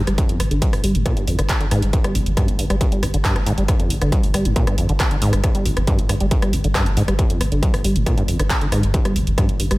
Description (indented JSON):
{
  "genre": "driving peak-time techno",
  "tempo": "137 BPM",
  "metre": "4/4",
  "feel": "straight",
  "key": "unclear",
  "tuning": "A4 = 443 Hz",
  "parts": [
    { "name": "acid bass, saw", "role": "riff", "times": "0.0-9.8 s", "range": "G1 to G3", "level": "-22 LUFS", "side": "equal", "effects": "sidechain pumping, dub echo" },
    { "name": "saturated sub bass", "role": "bass", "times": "0.0-9.8 s", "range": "G1", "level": "-22 LUFS", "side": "equal", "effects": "tube saturation, sidechain pumping, low-pass filter" },
    { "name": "techno drum kit", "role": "drums", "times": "0.1-9.8 s", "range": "handclaps, hi-hat, rim click", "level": "-26 LUFS", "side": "equal", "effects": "overdrive, studio reverb" },
    { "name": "electronic kick drum", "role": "drums", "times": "0.2-9.5 s", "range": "none", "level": "-20 LUFS", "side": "equal", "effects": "distortion, overdrive, studio reverb" }
  ],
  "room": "little or no reverb",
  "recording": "none",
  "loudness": "-16 LUFS",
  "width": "side -20 dB against mid",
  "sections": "0.0-9.8 A section",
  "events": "none",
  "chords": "0.0 G5"
}